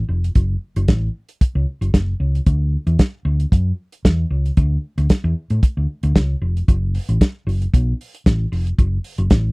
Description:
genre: disco.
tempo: 114 BPM.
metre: 4/4.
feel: straight.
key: F# minor.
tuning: A4 = 436 Hz.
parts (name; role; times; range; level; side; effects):
hollow-body short-scale fingered electric bass; bass; 0.0-9.5 s; E#1 to A2; -18 LUFS; equal; none.
warm soul drum kit; drums; 0.2-9.4 s; hi-hat, kick drum, snare drum; -13 LUFS; equal; none.
room: little or no reverb.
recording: dry, close 1970s-style studio recording.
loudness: -16 LUFS.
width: side -32 dB against mid.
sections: 0.0-9.5 A section.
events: none.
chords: none.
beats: | 0.36 0.89 1.41 1.94 | 2.47 2.99 3.52 4.05 | 4.57 5.10 5.62 6.15 | 6.68 7.20 7.73 8.25 | 8.78 9.30.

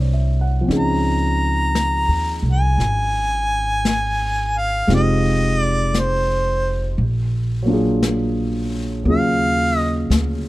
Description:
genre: jazz ballad.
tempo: 57 BPM.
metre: 4/4.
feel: swing 67% on 8ths.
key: unclear.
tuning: A4 = 440 Hz.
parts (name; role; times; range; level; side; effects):
warm concert grand piano; accompaniment; 0.0-10.5 s; Db3 to F#5; -22 LUFS; equal; none.
upright bass; bass; 0.0-10.5 s; F1 to Eb2; -20 LUFS; equal; none.
jazz brush drum kit; drums; 0.7-10.5 s; brushed snare drum, hi-hat, snare drum; -27 LUFS; left 3 dB; none.
warm harmonica; melody; 0.8-10.1 s; C5 to Bb5; -21 LUFS; equal; none.
room: little or no reverb.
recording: dark, warm production.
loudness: -17 LUFS.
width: side -17 dB against mid.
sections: 0.0-10.5 A section.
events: none.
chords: 0.0 D9; 0.7 Dbmaj9; 4.9 Fm9; 7.0 Bb7b13; 9.1 Ebm11.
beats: | 0.68 1.74 2.79 3.84 | 4.89 5.94 6.99 8.03 | 9.07 10.11.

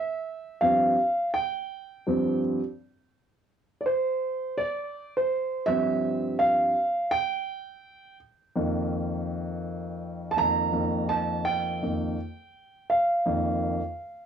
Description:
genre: hip hop.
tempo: 83 BPM.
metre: 4/4.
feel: swing 63% on 16ths.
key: unclear.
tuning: A4 = 435 Hz.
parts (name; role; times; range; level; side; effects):
dark grand piano; solo; 0.0-14.3 s; F2 to Bb5; -25 LUFS; right 1 dB; cassette tape.
room: light reverb.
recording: home recording on cassette.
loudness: -25 LUFS.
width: side -8 dB against mid.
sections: 0.0-14.3 A section.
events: grand piano solo 0.0-14.3.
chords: 0.0 G7sus4; 7.5 F9sus4.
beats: 0.26 0.98 | 1.71 2.43 3.15 3.87 | 4.60 5.32 6.04 6.77 | 7.49 8.21 8.93 9.66 | 10.38 11.10 11.83 12.55 | 13.27 13.99.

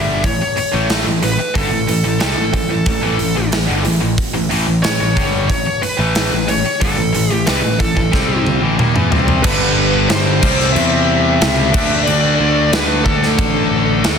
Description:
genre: hard rock.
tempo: 91 BPM.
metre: 4/4.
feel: straight.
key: unclear.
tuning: A4 = 444 Hz.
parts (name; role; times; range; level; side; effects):
high-gain lead guitar; melody; 0.0-14.2 s; A4 to E5; -20 LUFS; equal; distortion.
tight distorted guitar; riff; 0.0-14.2 s; G2 to D4; -21 LUFS; left 13 dB; distortion.
tight distorted guitar; riff; 0.0-14.2 s; G2 to D4; -22 LUFS; right 11 dB; distortion.
picked electric bass; bass; 0.0-14.2 s; G1 to E2; -20 LUFS; equal; none.
big rock drum kit; drums; 0.2-14.2 s; crash cymbal, hi-hat, kick drum, snare drum, toms; -18 LUFS; equal; soft clipping on kick.
crunchy overdriven guitar; riff; 9.4-14.2 s; G2 to D4; -21 LUFS; left 1 dB; none.
room: light reverb.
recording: dense, heavily limited modern master.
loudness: -13 LUFS.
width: side -6 dB against mid.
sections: 0.0-9.4 A section; 9.4-14.2 B section.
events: drum fill 8.1-9.4.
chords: 0.0 A; 9.4 G; 10.4 C; 11.7 D5.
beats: 0.24 0.89 | 1.55 2.21 2.87 3.52 | 4.18 4.84 5.50 6.16 | 6.81 7.47 8.13 8.79 | 9.45 10.10 10.76 11.42 | 12.07 12.73 13.38 14.04.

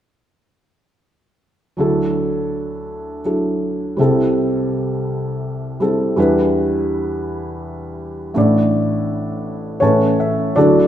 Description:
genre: folk.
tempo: 82 BPM.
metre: 3/4.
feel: straight.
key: D major.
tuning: A4 = 440 Hz.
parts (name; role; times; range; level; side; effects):
felt-muted upright piano; melody; 1.8-10.9 s; A1 to A5; -16 LUFS; equal; none.
room: moderate scoring stage reverb, RT60 2.0 s.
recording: minimal, uncompressed stereo recording.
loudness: -16 LUFS.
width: side -10 dB against mid.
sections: 1.8-10.6 A section.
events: felt piano fill 9.4-10.6.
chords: 1.8 Dadd9; 4.0 Am7/C; 6.2 Em7; 8.4 Asus4; 9.8 Aadd9.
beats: | 1.78 2.51 3.25 | 3.98 4.71 5.44 | 6.17 6.90 7.62 | 8.35 9.08 9.82 | 10.56.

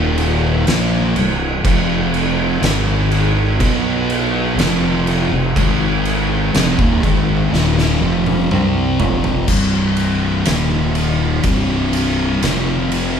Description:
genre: stoner and doom metal.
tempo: 61 BPM.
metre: 4/4.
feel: straight.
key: unclear.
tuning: A4 = 436 Hz.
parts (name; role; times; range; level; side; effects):
thick fuzz guitar; riff; 0.0-13.2 s; C2 to C4; -17 LUFS; equal; distortion.
fuzz fingered electric bass; bass; 0.0-13.2 s; C1 to C2; -21 LUFS; equal; overdrive.
oversized low-tuned drum kit; drums; 0.2-13.1 s; crash cymbal, kick drum, ride cymbal, snare drum, toms; -19 LUFS; equal; none.
room: moderate large studio reverb, RT60 1.3 s.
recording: band playing live in one room.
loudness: -14 LUFS.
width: side -7 dB against mid.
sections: 0.0-9.5 A section; 9.5-13.2 B section.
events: drum fill 7.5-9.5.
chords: 0.0 Eb5; 0.7 C5; 1.6 F5; 2.6 Ab5; 3.6 B5; 4.6 F5; 5.6 Ab5; 6.5 F5; 9.5 C5; 10.5 Eb5; 11.4 C5; 12.4 F5.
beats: 0.67 | 1.65 2.63 3.61 4.58 | 5.56 6.54 7.52 8.50 | 9.48 10.47 11.45 12.43.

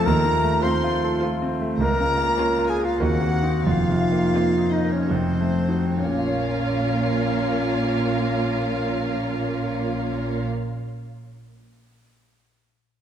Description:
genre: classical, romantic movement for piano and orchestra.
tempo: 65-106 BPM.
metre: 3/4.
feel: rubato.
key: Bb minor.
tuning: A4 = 440 Hz.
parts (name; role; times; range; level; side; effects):
clear concert grand piano; melody; 0.0-10.9 s; Db2 to Db5; -24 LUFS; equal; none.
warm chamber violin section; melody; 0.0-10.4 s; C5 to C6; -35 LUFS; left 4 dB; none.
clear clarinet; second line; 0.0-10.4 s; C4 to C5; -27 LUFS; equal; none.
concert flute; second line; 0.0-10.4 s; C5 to C6; -29 LUFS; left 1 dB; none.
mellow French horn section; sustained chords; 0.1-10.5 s; A3 to F4; -30 LUFS; equal; none.
rich studio cello section; bass; 0.1-10.4 s; Db2 to Bb2; -31 LUFS; right 2 dB; none.
warm studio double bass section; bass; 0.1-10.5 s; F1 to Eb2; -30 LUFS; right 2 dB; none.
rich studio viola section; accompaniment; 0.6-10.4 s; A3 to Gb4; -31 LUFS; right 5 dB; none.
dark studio violin section; second line; 0.7-10.4 s; Bb4 to F5; -32 LUFS; left 1 dB; none.
room: wet concert hall reverb, RT60 2.1 s.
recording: minimal, uncompressed stereo recording.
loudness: -20 LUFS.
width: side -9 dB against mid.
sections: 0.0-6.0 A section; 6.0-10.8 B section.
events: slowing down 0.9-6.0.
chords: 0.0 F7/Eb; 1.8 Bbm/Db; 3.0 Cm7b5/Eb; 3.7 F7sus4; 5.1 F7b9; 6.0 Bbm.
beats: | 0.05 0.63 1.21 | 1.79 2.38 3.00 | 3.66 4.35 5.11 | 5.98 6.77 7.57 | 8.39 9.20 10.01.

